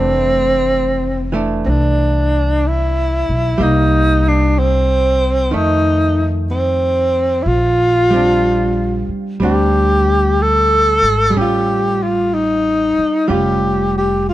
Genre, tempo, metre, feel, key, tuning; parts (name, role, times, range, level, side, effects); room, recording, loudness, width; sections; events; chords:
jazz ballad; 62 BPM; 4/4; swing 68% on 8ths; F major; A4 = 441 Hz
breathy tenor saxophone; melody; 0.0-14.3 s; C4 to A4; -15 LUFS; equal
archtop guitar, miked and amplified; accompaniment; 0.0-14.3 s; Eb3 to E#4; -21 LUFS; right 2 dB
upright bass; bass; 0.0-14.3 s; F1 to F2; -18 LUFS; equal
light reverb; dark, warm production; -13 LUFS; side -14 dB against mid
0.0-14.3 A section
0.0 F6; 3.6 C5; 5.5 F7; 7.5 Bb69; 11.3 Aaug7